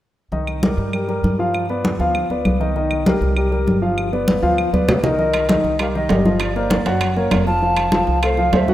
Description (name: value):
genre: Afro-Cuban jazz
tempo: 197 BPM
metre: 4/4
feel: straight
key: C harmonic minor, C minor from 5.2 s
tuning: A4 = 442 Hz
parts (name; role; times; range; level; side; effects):
- warm concert grand piano; accompaniment; 0.3-8.7 s; Eb3 to F#5; -19 LUFS; left 1 dB; none
- upright bass; bass; 0.3-8.7 s; F1 to G2; -23 LUFS; equal; none
- congas; percussion; 0.3-8.7 s; none; -21 LUFS; equal; none
- claves; percussion; 0.5-8.4 s; none; -32 LUFS; right 2 dB; none
- hollow concert flute; melody; 5.1-8.7 s; Bb4 to A5; -23 LUFS; equal; none
- timbales; percussion; 5.3-8.7 s; none; -27 LUFS; right 6 dB; none
room: moderate lush hall reverb, RT60 2.3 s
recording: rough home demo mix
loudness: -16 LUFS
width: side -13 dB against mid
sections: 0.3-5.2 A section; 5.2-8.7 B section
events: drum fill 4.7-5.2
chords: 0.3 Cm7; 1.5 G7; 2.8 Cm7; 4.0 G7; 5.2 Cm7; 6.4 Gm7; 7.0 F#; 7.6 F